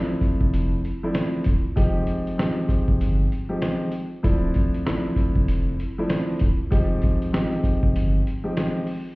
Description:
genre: hip hop, boom-bap hip-hop.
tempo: 97 BPM.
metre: 4/4.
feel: swing 61% on 16ths.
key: D minor.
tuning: A4 = 440 Hz.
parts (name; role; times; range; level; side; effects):
dark grand piano; accompaniment; 0.0-8.8 s; F3 to G4; -25 LUFS; equal; cassette tape, high-pass filter, low-pass filter.
dusty soul sampler-style drum kit; drums; 0.2-9.0 s; hi-hat, kick drum, snare drum; -22 LUFS; equal; none.
warm sub bass; bass; 0.4-8.2 s; D1 to G1; -23 LUFS; equal; none.
room: light reverb.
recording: heard muffled through a wall, stone room reverb, EQ.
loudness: -20 LUFS.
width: side -22 dB against mid.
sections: 0.0-9.2 A section.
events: none.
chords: 0.0 Dm9; 1.8 Fm9; 4.2 Dm9; 6.7 Fm9.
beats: 0.53 1.15 | 1.77 2.39 3.00 3.62 | 4.24 4.86 5.48 6.10 | 6.72 7.33 7.95 8.57.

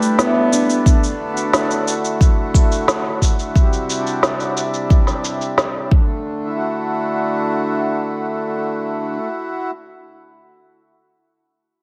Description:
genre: folktronica.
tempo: 89 BPM.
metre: 4/4.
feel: straight.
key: D major.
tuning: A4 = 442 Hz.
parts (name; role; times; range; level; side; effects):
dark cello; melody; 0.0-0.9 s; A3 to B3; -23 LUFS; equal; tape echo.
hand-pumped harmonium; sustained chords; 0.0-9.7 s; C3 to B4; -23 LUFS; equal; none.
fingerpicked acoustic archtop guitar; arpeggios; 0.0-1.4 s; G3 to B4; -25 LUFS; equal; tape echo.
electronic shaker and snare drum; drums; 0.0-5.7 s; none; -23 LUFS; equal; low-pass filter on perc, low-pass filter on snare, low-pass filter on room.
electronic kick drum; drums; 0.9-6.0 s; none; -16 LUFS; equal; none.
room: light reverb.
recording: none.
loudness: -18 LUFS.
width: mono.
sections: 0.0-6.3 A section; 6.3-8.9 B section.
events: filter sweep on drum 0.0-6.3.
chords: 0.0 G6; 0.9 D6; 3.6 C; 5.9 D5; 6.3 D.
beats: 0.18 | 0.86 1.53 2.21 2.88 | 3.56 4.23 4.90 5.58 | 6.25 6.93 7.60 8.27.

